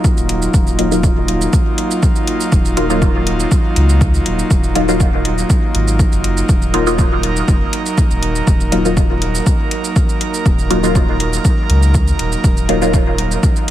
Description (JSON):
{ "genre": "dub techno", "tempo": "121 BPM", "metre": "4/4", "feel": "straight", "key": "Eb minor", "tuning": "A4 = 440 Hz", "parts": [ { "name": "airy breathy pad", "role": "sustained chords", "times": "0.0-13.7 s", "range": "Gb3 to Bb4", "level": "-20 LUFS", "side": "right 2 dB", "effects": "chorus, sidechain pumping" }, { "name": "electronic kick drum", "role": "drums", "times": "0.0-13.5 s", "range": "none", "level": "-14 LUFS", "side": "equal", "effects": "overdrive" }, { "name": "electronic shaker and hi-hat", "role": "drums", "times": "0.0-13.7 s", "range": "none", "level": "-25 LUFS", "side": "right 2 dB", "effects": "overdrive" }, { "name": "warm sub bass", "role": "bass", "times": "0.2-13.7 s", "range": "Eb1 to Db2", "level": "-18 LUFS", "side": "equal", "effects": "sidechain pumping" }, { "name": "filtered dub chord stab", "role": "stabs", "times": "0.8-12.9 s", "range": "Gb3 to F4", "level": "-19 LUFS", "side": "left 1 dB", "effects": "chorus, phaser, sidechain pumping, dub echo" } ], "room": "little or no reverb", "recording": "vinyl crackle", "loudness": "-12 LUFS", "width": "side -12 dB against mid", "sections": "0.0-13.7 A section", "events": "none", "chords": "0.0 Ebmadd9" }